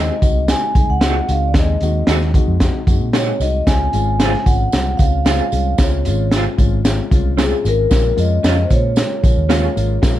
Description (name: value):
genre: uptempo 1960s-style soul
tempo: 113 BPM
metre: 4/4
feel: straight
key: Db major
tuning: A4 = 441 Hz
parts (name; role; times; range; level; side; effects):
- vibraphone with soft mallets; melody; 0.0-10.2 s; Ab4 to Ab5; -21 LUFS; equal; none
- dark upright piano; accompaniment; 0.0-10.2 s; Ab3 to Ab4; -24 LUFS; left 6 dB; none
- electric guitar through a small old amp; stabs; 0.0-9.6 s; C4 to Ab4; -23 LUFS; right 4 dB; tremolo
- vintage muted fingered electric bass; bass; 0.0-10.2 s; Ab1 to Bb2; -18 LUFS; equal; none
- crunchy breakbeat drum kit; drums; 0.2-10.2 s; hi-hat, kick drum, snare drum; -16 LUFS; equal; none
- tambourine; percussion; 0.2-10.2 s; none; -33 LUFS; right 5 dB; none
room: light reverb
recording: dark, warm production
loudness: -13 LUFS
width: side -13 dB against mid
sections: 0.0-10.2 A section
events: none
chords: 0.0 Ab7; 3.7 Dbmaj7; 7.9 Bbm7